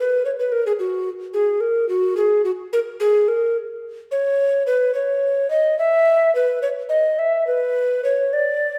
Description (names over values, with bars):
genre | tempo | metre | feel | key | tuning
classical, baroque-style fantasia for unaccompanied recorder | 72 BPM (dotted quarters) | 12/8 | rubato | F# major, B major from 4.1 s | A4 = 440 Hz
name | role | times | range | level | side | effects
mellow hollow tenor recorder | solo | 0.0-8.8 s | F#4 to E5 | -20 LUFS | equal | none
room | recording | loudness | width
wet recital hall reverb, RT60 1.7 s | recorded in a church or concert hall | -20 LUFS | mono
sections
0.0-8.8 A section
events
none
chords
none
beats
| 0.80 1.62 2.46 3.29 | 4.12 4.96 5.79 6.63 | 7.48 8.33